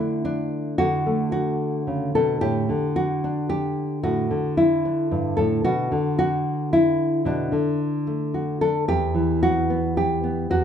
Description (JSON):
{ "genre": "folk, solo fingerstyle acoustic guitar", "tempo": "111 BPM", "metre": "3/4", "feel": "straight", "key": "E minor", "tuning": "A4 = 443 Hz", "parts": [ { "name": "nylon-string guitar", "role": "solo", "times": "0.0-10.6 s", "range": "E2 to A4", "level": "-20 LUFS", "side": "equal", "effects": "none" } ], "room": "moderate large studio reverb, RT60 1.2 s", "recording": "band playing live in one room, nothing above 10.5 kHz", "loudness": "-20 LUFS", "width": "side -8 dB against mid", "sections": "0.0-8.9 A section; 8.9-10.6 A section", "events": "none", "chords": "0.0 D; 2.4 Asus4; 5.6 Bm7; 8.9 Emadd9", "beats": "0.25 | 0.79 1.33 1.87 | 2.41 2.95 3.49 | 4.03 4.57 5.10 | 5.64 6.17 6.71 | 7.25 7.79 8.33 | 8.87 9.41 9.95 | 10.49" }